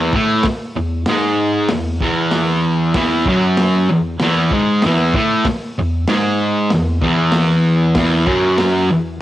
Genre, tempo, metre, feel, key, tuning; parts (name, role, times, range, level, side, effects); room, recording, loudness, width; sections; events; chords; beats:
garage rock duo or trio; 96 BPM; 4/4; straight; E major; A4 = 440 Hz
fuzz guitar; riff; 0.0-9.2 s; E2 to A3; -14 LUFS; equal; distortion
crunchy breakbeat drum kit; drums; 0.1-8.7 s; hi-hat, kick drum, snare drum; -22 LUFS; equal; cassette tape
little or no reverb; home recording on cassette; -13 LUFS; side -14 dB against mid
0.0-9.2 A section
0.0 E
| 0.45 1.07 1.70 2.32 | 2.95 3.57 4.20 4.83 | 5.45 6.08 6.70 7.33 | 7.96 8.59